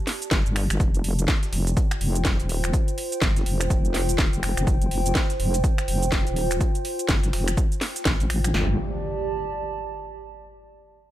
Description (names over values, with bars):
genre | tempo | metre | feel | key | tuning
bass house | 124 BPM | 4/4 | swing 60% on 16ths | unclear | A4 = 440 Hz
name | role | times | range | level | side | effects
warbly tape-like pad | texture | 0.0-10.4 s | F4 to A5 | -30 LUFS | right 1 dB | chorus, built-in reverb, sidechain pumping
dusty soul sampler-style drum kit | drums | 0.1-8.4 s | hi-hat, snare drum | -39 LUFS | right 1 dB | none
garage drum kit | drums | 0.1-8.5 s | finger snaps, hi-hat, shaker, snare drum | -28 LUFS | equal | none
wobble bass | bass | 0.3-8.8 s | Eb1 to A1 | -24 LUFS | equal | chorus, tube saturation, sidechain pumping
big-room dance drum kit | drums | 0.3-8.7 s | kick drum, snare drum | -23 LUFS | equal | none
impact | sound effects | 8.5-10.5 s | none | -33 LUFS | equal | none
room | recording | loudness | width
little or no reverb | none | -21 LUFS | side -14 dB against mid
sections
0.0-8.5 A section; 8.5-10.5 B section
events
filter sweep on wobble bass 0.0-8.5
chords
0.0 G5; 0.8 Fadd9; 8.5 G5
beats
0.32 | 0.80 1.28 1.77 2.25 | 2.73 3.22 3.70 4.19 | 4.67 5.16 5.64 6.12 | 6.61 7.09 7.57 8.06 | 8.54 9.03 9.51 9.99